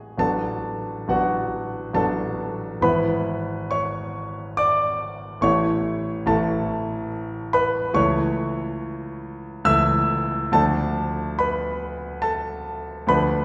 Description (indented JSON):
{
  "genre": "classical, romantic character piece for solo piano",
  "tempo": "70 BPM",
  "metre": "3/4",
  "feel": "rubato",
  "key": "A major",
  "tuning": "A4 = 441 Hz",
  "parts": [
    { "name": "clear concert grand piano", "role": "solo", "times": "0.0-13.4 s", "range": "G#1 to E6", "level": "-24 LUFS", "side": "equal", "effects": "none" }
  ],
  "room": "wet concert hall reverb, RT60 2.2 s",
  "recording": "recorded in a church or concert hall",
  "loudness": "-24 LUFS",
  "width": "mono",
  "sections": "0.0-13.4 A section",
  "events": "none",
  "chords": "0.2 Bm7/A; 2.8 E/G#; 5.4 A; 8.0 A/C#; 10.5 Bm7b5/D"
}